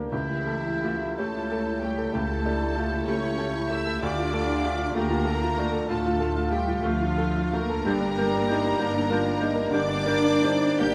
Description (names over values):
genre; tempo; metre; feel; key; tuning
classical; 54-67 BPM (dotted quarters); 12/8; rubato; D minor, G minor from 7.9 s; A4 = 444 Hz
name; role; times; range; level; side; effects
clear baby grand piano; melody; 0.0-10.9 s; C#2 to Bb4; -30 LUFS; equal; none
dark bassoon; accompaniment; 0.0-10.9 s; Bb3 to G4; -35 LUFS; equal; none
dark symphonic violin section; melody; 0.1-10.9 s; E5 to G6; -38 LUFS; equal; none
clear symphonic violin section; second line; 0.1-10.9 s; E4 to G5; -39 LUFS; equal; none
dark clarinet; second line; 0.1-10.9 s; A3 to D4; -39 LUFS; equal; none
silver concert flute; second line; 0.1-10.9 s; F6 to G6; -39 LUFS; equal; none
clear symphonic viola section; accompaniment; 0.1-10.9 s; G3 to G4; -40 LUFS; equal; none
mellow French horn section; sustained chords; 0.1-10.9 s; G3 to G4; -38 LUFS; equal; none
dark symphonic double bass section; bass; 0.1-10.9 s; G1 to D2; -35 LUFS; equal; none
rich symphonic cello section; bass; 0.1-10.9 s; F3 to G4; -35 LUFS; equal; none
room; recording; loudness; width
moderate scoring stage reverb, RT60 1.9 s; none; -26 LUFS; mono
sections
0.0-10.9 A section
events
none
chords
0.1 A7/C#; 4.0 Dm; 7.9 Gm